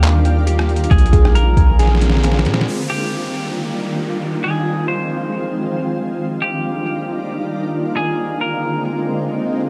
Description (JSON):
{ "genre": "hip hop, atmospheric cloud-rap", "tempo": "136 BPM", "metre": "4/4", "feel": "half-time", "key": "Eb major", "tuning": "A4 = 441 Hz", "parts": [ { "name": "semi-hollow electric guitar", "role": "melody", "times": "0.0-8.8 s", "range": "G4 to C5", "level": "-28 LUFS", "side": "equal", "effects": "lush chorus, low-pass filter, tape echo" }, { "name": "shimmering ambient pad", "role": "sustained chords", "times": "0.0-9.7 s", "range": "D3 to F4", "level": "-23 LUFS", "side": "equal", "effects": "chorus, built-in reverb, sidechain pumping" }, { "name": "glassy digital keys", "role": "arpeggios", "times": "0.0-2.7 s", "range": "G4 to Ab5", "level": "-29 LUFS", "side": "equal", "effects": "chorus, phaser, low-pass filter, tape echo" }, { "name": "warm 808-style bass", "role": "bass", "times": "0.0-2.7 s", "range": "Bb1 to Bb2", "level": "-16 LUFS", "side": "equal", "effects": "none" }, { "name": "trip hop sampler-style drum kit", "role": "drums", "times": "0.0-2.7 s", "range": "handclaps, hi-hat, kick drum, rim click, snare drum", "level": "-19 LUFS", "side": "equal", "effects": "none" }, { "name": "downlifter and swell", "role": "sound effects", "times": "2.7-9.7 s", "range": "none", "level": "-34 LUFS", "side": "equal", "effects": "none" } ], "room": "little or no reverb", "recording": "dark, warm production", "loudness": "-18 LUFS", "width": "mono", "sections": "0.0-2.7 A section; 2.7-9.7 B section", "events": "drum fill 1.8-2.7; swell 8.8-9.7", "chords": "0.0 Ebmaj9; 0.9 Bb9; 2.7 Ebmaj9; 4.4 Ab6; 6.2 Ebmaj9; 8.0 Bb9", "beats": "0.03 0.47 | 0.91 1.35 1.79 2.23 | 2.67 3.12 3.56 4.00 | 4.44 4.88 5.32 5.76 | 6.20 6.64 7.09 7.53 | 7.97 8.41 8.85 9.29" }